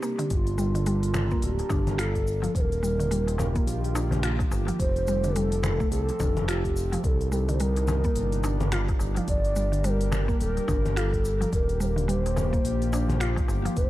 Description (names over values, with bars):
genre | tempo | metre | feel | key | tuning
organic downtempo | 107 BPM | 4/4 | swing 59% on 16ths | G minor | A4 = 440 Hz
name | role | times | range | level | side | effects
mellow hollow bass bansuri | melody | 0.0-13.9 s | F4 to D5 | -31 LUFS | right 1 dB | tape echo
warbly tape-like pad | sustained chords | 0.0-13.9 s | C3 to Bb4 | -35 LUFS | left 2 dB | chorus, built-in reverb, sidechain pumping
mallet-like synth pluck | arpeggios | 0.0-13.8 s | D3 to F4 | -32 LUFS | equal | chorus, tape echo
organic electronic drum kit | drums | 0.0-13.9 s | congas, finger snaps, hi-hat, shaker | -35 LUFS | left 2 dB | none
darbuka | percussion | 0.0-13.7 s | none | -38 LUFS | left 1 dB | none
smooth synth bass | bass | 0.3-13.9 s | D1 to C2 | -27 LUFS | equal | none
electronic kick drum | drums | 0.3-13.9 s | none | -28 LUFS | equal | none
room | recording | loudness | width
light reverb | dark, warm production | -23 LUFS | side -15 dB against mid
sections
0.3-13.9 A section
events
none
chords
0.3 Gm9; 2.5 Ebmaj9; 4.8 Fadd9; 7.0 Cm9; 9.3 Gm9; 11.5 Ebmaj9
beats
| 0.31 0.87 1.43 1.99 | 2.55 3.11 3.67 4.23 | 4.79 5.35 5.92 6.48 | 7.04 7.60 8.16 8.72 | 9.28 9.84 10.40 10.96 | 11.52 12.08 12.64 13.21 | 13.77